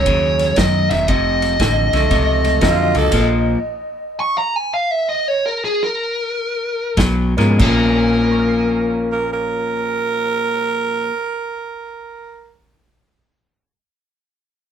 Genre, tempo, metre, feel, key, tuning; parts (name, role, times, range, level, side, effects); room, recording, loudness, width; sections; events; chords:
electric blues shuffle; 94-117 BPM; 4/4; swing 65% on 8ths; Bb minor; A4 = 439 Hz
biting lead guitar; melody; 0.0-10.8 s; Ab4 to Db6; -19 LUFS; right 1 dB; overdrive
electric guitar at the edge of break-up; riff; 0.0-3.6, 7.0-11.1 s; F2 to Db4; -19 LUFS; left 3 dB
vintage muted fingered electric bass; bass; 0.0-3.5, 7.0-10.8 s; Fb1 to Ab2; -20 LUFS; equal
vintage drum kit; drums; 0.1-3.3, 7.0-7.8 s; crash cymbal, kick drum, ride cymbal, snare drum; -21 LUFS; equal
growling tenor saxophone; second line; 2.0-3.3, 9.1-12.5 s; A3 to Bb4; -21 LUFS; right 4 dB
bright upright piano; accompaniment; 2.6-3.1, 7.4-11.8 s; Bb2 to Eb7; -26 LUFS; right 2 dB
moderate small room reverb, RT60 0.6 s; band playing live in one room; -15 LUFS; side -8 dB against mid
0.0-7.6 A section; 7.6-12.7 B section
slowing down 3.1-7.6; stop 3.1-7.0
0.0 Gb7(no3); 1.1 F7b9; 3.1 Bb5; 7.0 B5; 7.6 Bbm